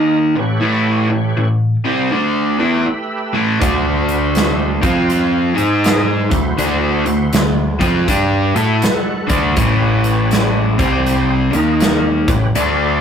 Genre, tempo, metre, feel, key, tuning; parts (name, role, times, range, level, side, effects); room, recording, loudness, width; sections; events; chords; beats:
blues rock power trio and southern rock; 81 BPM; 4/4; swing 64% on 8ths; A4 = 439 Hz
overdriven tonewheel organ; sustained chords; 0.0-13.0 s; A3 to A5; -24 LUFS; right 2 dB; slow rotary speaker, chorus vibrato
crunchy overdriven guitar; riff; 0.0-13.0 s; A2 to A4; -15 LUFS; equal
growling picked electric bass; bass; 3.6-13.0 s; A1 to A2; -19 LUFS; equal; overdrive
big rock drum kit; drums; 3.6-12.8 s; hi-hat, kick drum, snare drum; -19 LUFS; equal
wet small room ambience, RT60 0.5 s; rough rehearsal-room recording; -13 LUFS; side -7 dB against mid
0.0-13.0 A section
tonewheel organ fill 8.5-9.6
0.3 A7; 3.6 D7; 4.7 F5; 5.5 G#5; 6.2 D7; 9.6 A7; 10.7 C5; 11.4 D#5; 12.2 A7
| 0.64 1.38 2.12 2.87 | 3.61 4.35 5.10 5.84 | 6.59 7.33 8.08 8.82 | 9.57 10.31 11.06 11.80 | 12.55